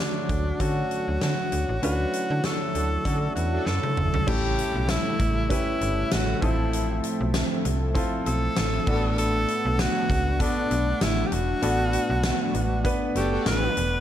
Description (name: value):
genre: 1980s-style pop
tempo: 98 BPM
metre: 4/4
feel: swing 55% on 16ths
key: unclear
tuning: A4 = 440 Hz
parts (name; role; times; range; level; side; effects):
- bright tenor saxophone; melody; 0.0-14.0 s; D4 to B4; -28 LUFS; equal; none
- clear baby grand piano; accompaniment; 0.0-14.0 s; A2 to F#5; -30 LUFS; left 1 dB; none
- brassy analog pad; sustained chords; 0.0-14.0 s; C#3 to F#5; -32 LUFS; equal; chorus
- slap-like FM bass; bass; 0.3-14.0 s; E1 to D3; -27 LUFS; equal; none
- huge arena drum kit; drums; 0.3-13.9 s; crash cymbal, hi-hat, kick drum, snare drum, tambourine, toms; -28 LUFS; equal; none
- analog synth brass; stabs; 2.4-3.8, 13.2-13.7 s; D4 to A4; -34 LUFS; right 1 dB; chorus, ping-pong delay
room: light reverb, small room ambience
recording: none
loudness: -22 LUFS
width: side -11 dB against mid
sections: 0.0-4.3 A section; 4.3-14.0 B section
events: band accent 1.8-4.3, 11.6-14.0; drum fill 3.7-4.3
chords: 0.0 Dmaj7; 4.3 A7; 6.4 Fmaj7/A; 8.9 D6/A; 11.6 Bm7/A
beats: 0.60 1.22 | 1.83 2.44 3.05 3.67 | 4.28 4.89 5.50 6.12 | 6.73 7.34 7.95 8.56 | 9.18 9.79 10.40 11.01 | 11.62 12.24 12.85 13.46